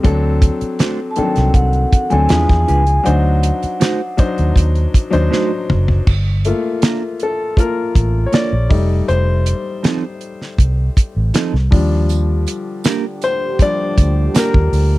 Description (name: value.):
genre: lush 1970s-style soul.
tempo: 80 BPM.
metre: 4/4.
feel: straight.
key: G minor.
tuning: A4 = 436 Hz.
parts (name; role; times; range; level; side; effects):
warm grand piano; accompaniment; 0.0-15.0 s; Eb3 to D5; -20 LUFS; left 3 dB; none.
vintage muted fingered electric bass; bass; 0.0-15.0 s; F1 to E2; -15 LUFS; equal; none.
damped 70s drum kit; drums; 0.0-14.9 s; crash cymbal, hi-hat, kick drum, snare drum, toms; -14 LUFS; equal; none.
mellow electric guitar; riff; 0.8-14.5 s; F3 to C5; -20 LUFS; right 5 dB; wide subtle chorus.
vibraphone with soft mallets; melody; 1.1-4.5 s; F#5 to A5; -20 LUFS; equal; none.
mellow French horn section; sustained chords; 12.1-15.0 s; D3 to G4; -26 LUFS; right 1 dB; none.
tambourine; percussion; 12.1-14.9 s; none; -32 LUFS; right 16 dB; none.
room: little or no reverb.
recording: dry, close 1970s-style studio recording.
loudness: -13 LUFS.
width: side -18 dB against mid.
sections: 0.0-6.1 A section; 6.1-15.0 B section.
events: drum fill 5.3-6.1; grand piano solo 6.1-15.0.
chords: 0.0 D7; 2.3 E7b9; 3.1 D7b9; 6.1 Gm7; 8.7 F7; 11.7 Ebmaj7.